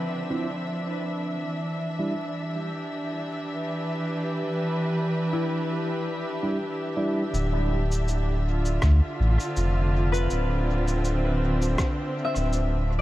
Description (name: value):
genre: ambient dub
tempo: 81 BPM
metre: 4/4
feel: swing 55% on 16ths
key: D dorian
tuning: A4 = 439 Hz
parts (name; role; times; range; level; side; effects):
- dark studio string section; sustained chords; 0.0-13.0 s; D3 to E5; -28 LUFS; right 1 dB; none
- concert harp; arpeggios; 0.0-13.0 s; E4 to E5; -35 LUFS; left 6 dB; dub echo
- tine electric piano; stabs; 0.3-7.2 s; F3 to E4; -32 LUFS; right 2 dB; low-pass filter, dub echo
- warm sub bass; bass; 7.3-13.0 s; D1 to D2; -23 LUFS; equal; none
- electronic shaker and rim click; drums; 7.3-12.7 s; none; -34 LUFS; equal; dub echo
- electronic kick drum; drums; 8.8-12.0 s; none; -28 LUFS; equal; none
room: light reverb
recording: vinyl crackle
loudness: -24 LUFS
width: side -16 dB against mid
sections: 0.0-7.3 A section; 7.3-13.0 B section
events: filter sweep on harp 0.0-7.3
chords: 0.0 Dm9; 1.4 Em7; 7.3 Dm9